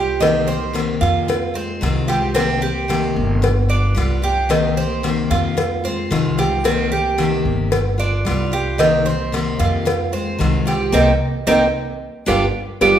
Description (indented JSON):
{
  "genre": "latin, Cuban son and guajira",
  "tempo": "112 BPM",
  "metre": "4/4",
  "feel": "straight",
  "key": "C minor",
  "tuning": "A4 = 440 Hz",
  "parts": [
    { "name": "picked steel-string acoustic guitar", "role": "accompaniment", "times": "0.0-13.0 s", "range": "C3 to G4", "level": "-21 LUFS", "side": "left 4 dB", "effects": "none" },
    { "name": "Cuban tres", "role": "arpeggios", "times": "0.0-13.0 s", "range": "C4 to C5", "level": "-20 LUFS", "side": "right 4 dB", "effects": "none" },
    { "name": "upright bass", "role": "bass", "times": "0.0-13.0 s", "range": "G1 to F2", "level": "-22 LUFS", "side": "equal", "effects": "none" },
    { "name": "cowbell", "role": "percussion", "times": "0.2-12.9 s", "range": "none", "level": "-24 LUFS", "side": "left 2 dB", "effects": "none" }
  ],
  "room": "wet large studio reverb, RT60 1.3 s",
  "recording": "band playing live in one room",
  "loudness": "-16 LUFS",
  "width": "side -10 dB against mid",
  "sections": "0.0-13.0 A section",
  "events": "band accent 10.9-13.0; drum fill 12.8",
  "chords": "0.2 Cm7; 1.3 Fm7; 2.4 Cm7; 3.4 G7; 4.5 Cm7; 5.6 Fm7; 6.7 Cm7; 7.7 G7; 8.8 Cm7; 9.9 Fm7; 10.9 Cm7; 12.0 G7"
}